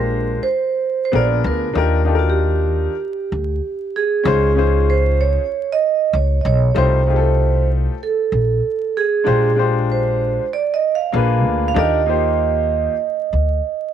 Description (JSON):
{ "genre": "hip hop", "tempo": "96 BPM", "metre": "4/4", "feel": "swing 65% on 16ths", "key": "Eb major", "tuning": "A4 = 441 Hz", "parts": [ { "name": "vibraphone with medium mallets", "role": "melody", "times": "0.0-13.9 s", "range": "Gb4 to F5", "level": "-19 LUFS", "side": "right 7 dB", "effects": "none" }, { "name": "warm baby grand piano", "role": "accompaniment", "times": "0.0-12.9 s", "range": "Ab3 to C5", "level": "-21 LUFS", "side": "left 10 dB", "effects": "none" }, { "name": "upright bass", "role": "bass", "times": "0.0-13.6 s", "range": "Bb1 to Eb2", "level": "-18 LUFS", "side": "equal", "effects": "none" } ], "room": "light reverb, small room ambience", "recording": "1960s-style stereo with parts hard left and right, vinyl crackle", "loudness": "-15 LUFS", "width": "side -9 dB against mid", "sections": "0.0-13.9 A section", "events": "none", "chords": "0.0 Bb13; 1.1 Bb7b9; 1.8 Ebmaj7; 4.3 Dbmaj7; 6.8 F7/C; 9.3 Bb13; 11.1 Bb7b9; 11.8 Ebmaj7", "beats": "0.51 1.13 | 1.76 2.38 3.01 3.63 | 4.26 4.88 5.51 6.13 | 6.76 7.38 8.01 8.63 | 9.26 9.88 10.51 11.13 | 11.76 12.38 13.01 13.63" }